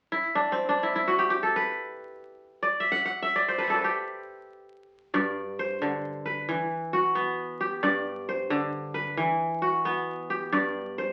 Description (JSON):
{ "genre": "west african traditional", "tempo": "89 BPM (dotted quarters)", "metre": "12/8", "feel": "straight", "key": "G major", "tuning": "A4 = 440 Hz", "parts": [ { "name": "kora", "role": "solo", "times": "0.1-11.1 s", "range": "G2 to A5", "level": "-28 LUFS", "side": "equal", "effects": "none" } ], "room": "wet studio reverb, RT60 0.7 s", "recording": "very old 78 rpm record, vinyl crackle", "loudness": "-28 LUFS", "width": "mono", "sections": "0.0-5.1 A section; 5.1-11.1 B section", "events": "kora solo 0.0-5.1", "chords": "0.0 G; 6.5 Em; 7.8 G; 9.2 Em; 10.5 G" }